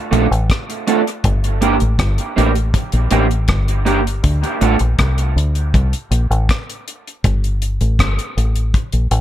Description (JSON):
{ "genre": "dub reggae", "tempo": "80 BPM", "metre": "4/4", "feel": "straight", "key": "D minor", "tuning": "A4 = 440 Hz", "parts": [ { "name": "electric guitar through a small old amp", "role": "accompaniment", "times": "0.1-4.8 s", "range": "A3 to Bb4", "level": "-19 LUFS", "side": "right 4 dB", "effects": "wide subtle chorus, dub echo" }, { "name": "deep dub fingered electric bass", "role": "bass", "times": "0.1-9.2 s", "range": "G1 to D2", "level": "-16 LUFS", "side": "equal", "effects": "none" }, { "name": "deep reggae drum kit", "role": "drums", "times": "0.1-9.2 s", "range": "hi-hat, kick drum, rim click", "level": "-19 LUFS", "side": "left 1 dB", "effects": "none" } ], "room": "studio ambience", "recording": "echo-heavy mix", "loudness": "-14 LUFS", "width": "side -12 dB against mid", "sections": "0.0-9.2 A section", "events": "none", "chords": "0.0 Dm; 1.3 Gm; 4.2 D5; 7.2 N.C." }